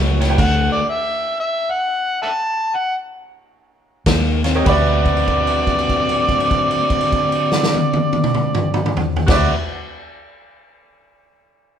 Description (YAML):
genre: electric blues shuffle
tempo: 98-122 BPM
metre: 4/4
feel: swing 64% on 8ths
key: D mixolydian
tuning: A4 = 441 Hz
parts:
  - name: clear upright piano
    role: second line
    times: 0.0-0.3, 4.7-9.5 s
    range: E4 to D5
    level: -25 LUFS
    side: right 3 dB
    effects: none
  - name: biting overdriven guitar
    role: riff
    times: 0.0-0.8, 4.1-9.5 s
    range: A2 to B4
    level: -22 LUFS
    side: left 4 dB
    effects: none
  - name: vintage muted fingered electric bass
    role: bass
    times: 0.0-0.7, 4.1-9.5 s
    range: C#2 to Eb2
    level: -20 LUFS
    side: equal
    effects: none
  - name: bright upright piano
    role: accompaniment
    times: 0.2-0.4, 4.4-9.5 s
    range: F#4 to G5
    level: -26 LUFS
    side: right 4 dB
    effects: none
  - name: vintage drum kit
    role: drums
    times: 0.2-0.5, 4.1-9.4 s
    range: crash cymbal, kick drum, ride cymbal, snare drum, toms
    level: -20 LUFS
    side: equal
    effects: none
  - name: overdriven harmonica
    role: melody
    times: 0.4-9.5 s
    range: G4 to A5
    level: -19 LUFS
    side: right 2 dB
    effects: none
room: moderate large studio reverb, RT60 1.3 s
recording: band playing live in one room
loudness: -15 LUFS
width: side -8 dB against mid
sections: 0.0-4.7 A section; 4.7-9.6 B section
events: slowing down 0.4-4.7; stop 0.4-4.1; held note 4.7-9.2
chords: 0.4 Dadd9; 4.1 Eb7; 4.7 D13